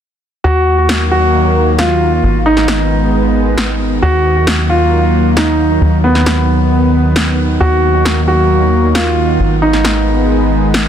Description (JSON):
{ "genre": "uplifting trance", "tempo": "134 BPM", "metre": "4/4", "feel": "straight", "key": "Eb minor", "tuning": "A4 = 442 Hz", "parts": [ { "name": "warm grand piano", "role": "second line", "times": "0.4-10.9 s", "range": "B3 to Gb4", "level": "-14 LUFS", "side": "right 1 dB", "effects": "ping-pong delay" }, { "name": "lush unison pad", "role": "sustained chords", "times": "0.7-10.9 s", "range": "Eb3 to Cb4", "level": "-16 LUFS", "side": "right 1 dB", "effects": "chorus" }, { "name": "tight sequencer bass", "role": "bass", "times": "0.4-10.9 s", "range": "Ab1 to Eb2", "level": "-14 LUFS", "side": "left 1 dB", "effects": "none" }, { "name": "electronic snare drum", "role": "drums", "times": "0.9-10.8 s", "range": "none", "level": "-19 LUFS", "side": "equal", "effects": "none" } ], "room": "light reverb, digital ambience", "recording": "dense, heavily limited modern master", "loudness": "-10 LUFS", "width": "side -9 dB against mid", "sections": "0.4-10.9 A section", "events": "none", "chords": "0.4 Ebm; 2.2 Abm; 4.0 Ebm; 5.8 B/D#; 7.6 Ebm; 9.4 Abm", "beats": "| 0.44 0.89 1.34 1.79 | 2.23 2.68 3.13 3.58 | 4.03 4.47 4.92 5.37 | 5.82 6.26 6.71 7.16 | 7.61 8.05 8.50 8.95 | 9.40 9.85 10.29 10.74" }